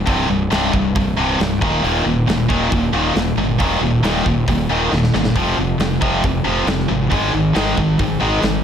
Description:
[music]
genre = hard rock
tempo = 136 BPM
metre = 4/4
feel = straight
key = unclear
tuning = A4 = 439 Hz
[part]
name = heavy high-gain guitar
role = riff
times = 0.0-8.6 s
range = C2 to Ab3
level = -17 LUFS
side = equal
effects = distortion
[part]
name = fuzz fingered electric bass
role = bass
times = 0.0-8.6 s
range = C1 to Ab1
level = -22 LUFS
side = equal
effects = overdrive
[part]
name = big rock drum kit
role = drums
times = 0.1-8.5 s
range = hi-hat, kick drum, snare drum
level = -22 LUFS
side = equal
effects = none
[sound]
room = light reverb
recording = none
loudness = -15 LUFS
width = side -8 dB against mid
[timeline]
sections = 0.0-8.6 A section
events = drum fill 4.9-5.4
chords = 0.0 C5; 1.6 Eb5; 5.4 F5; 7.1 Ab5

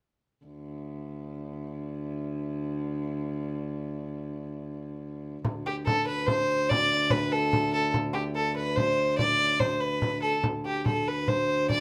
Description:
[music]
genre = medieval dance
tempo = 96 BPM (dotted quarters)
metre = 6/8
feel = straight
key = unclear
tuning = A4 = 440 Hz
[part]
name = rich viola da gamba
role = drone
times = 0.5-11.8 s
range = D2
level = -35 LUFS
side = equal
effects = none
[part]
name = frame drum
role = percussion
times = 5.4-11.8 s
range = none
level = -33 LUFS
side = equal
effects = none
[part]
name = rich fiddle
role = melody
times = 5.7-11.8 s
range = G4 to D5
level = -28 LUFS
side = equal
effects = none
[sound]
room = wet studio reverb, RT60 0.5 s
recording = rough home demo mix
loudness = -28 LUFS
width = mono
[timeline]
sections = 0.4-5.4 A section; 5.4-11.8 B section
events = none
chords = none

